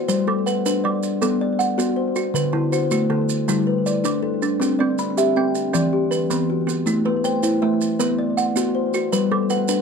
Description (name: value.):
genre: southern african traditional, mbira-style interlocking cycle.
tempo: 106 BPM (dotted quarters).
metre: 12/8.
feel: straight.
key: G major.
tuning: A4 = 440 Hz.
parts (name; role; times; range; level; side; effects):
kalimba; arpeggios; 0.0-9.8 s; D3 to B5; -20 LUFS; left 5 dB; slapback echo.
kalimba; arpeggios; 0.0-9.8 s; D3 to F#5; -22 LUFS; right 7 dB; none.
maracas; percussion; 0.1-9.8 s; none; -31 LUFS; right 8 dB; none.
room: light reverb.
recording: dark, warm production.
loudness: -18 LUFS.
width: side -6 dB against mid.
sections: 0.1-9.8 A section.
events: none.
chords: 0.1 G; 2.3 D; 3.5 G; 4.6 C; 5.7 Em; 6.9 Am; 8.0 Bm; 9.1 G.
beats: | 0.09 0.65 1.22 1.78 | 2.35 2.91 3.48 4.04 | 4.61 5.17 5.74 6.30 | 6.87 7.43 8.00 8.56 | 9.12 9.69.